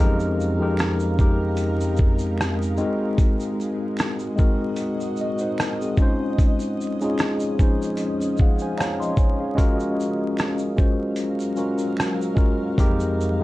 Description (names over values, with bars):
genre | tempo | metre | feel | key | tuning
lo-fi hip hop | 75 BPM | 4/4 | swing 55% on 16ths | F phrygian | A4 = 439 Hz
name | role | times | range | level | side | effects
bright tine electric piano | accompaniment | 0.0-13.4 s | F2 to C6 | -23 LUFS | left 1 dB | medium stereo tremolo, cassette tape
granular cloud pad | sustained chords | 0.1-13.4 s | F3 to F5 | -33 LUFS | right 1 dB | built-in reverb
dusty soul sampler-style drum kit | drums | 0.2-13.4 s | hi-hat, kick drum, rim click, shaker | -20 LUFS | equal | vintage 12-bit sampler grit
finger snap | percussion | 0.8-12.2 s | none | -41 LUFS | right 4 dB | none
room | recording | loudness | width
light reverb | vinyl crackle, nothing above 10.4 kHz | -20 LUFS | side -18 dB against mid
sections
0.0-13.4 A section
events
tine electric piano fill 8.0-9.6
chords
0.0 Fm11; 2.8 Ab7; 6.0 Dbmaj7; 9.6 Gbmaj7; 12.8 Fm11